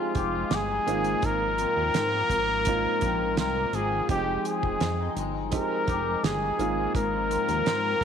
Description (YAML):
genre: indie pop, bedroom pop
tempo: 84 BPM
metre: 4/4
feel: straight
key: unclear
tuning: A4 = 440 Hz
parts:
  - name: breathy trumpet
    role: melody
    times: 0.0-8.0 s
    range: F4 to Bb4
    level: -26 LUFS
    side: left 1 dB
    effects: analog chorus, slapback echo
  - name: clean electric guitar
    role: accompaniment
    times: 0.0-8.0 s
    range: Ab2 to G4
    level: -33 LUFS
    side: left 13 dB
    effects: lush chorus, warbly pitch drift
  - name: warm upright piano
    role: accompaniment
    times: 0.0-8.0 s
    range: G3 to G5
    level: -33 LUFS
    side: right 11 dB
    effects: cassette tape
  - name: damped 70s drum kit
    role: drums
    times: 0.1-8.0 s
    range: hi-hat, kick drum, snare drum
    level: -31 LUFS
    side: right 3 dB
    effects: none
  - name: chorused synth bass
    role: bass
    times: 0.2-8.0 s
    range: F1 to Ab2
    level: -32 LUFS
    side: equal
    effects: none
room: moderate echo chamber reverb, RT60 2.1 s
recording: 1960s-style stereo with parts hard left and right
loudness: -24 LUFS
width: side -7 dB against mid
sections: 0.0-8.0 A section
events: none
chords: 0.0 Fm9; 0.9 Ab69; 4.1 Fm9; 6.6 Ab69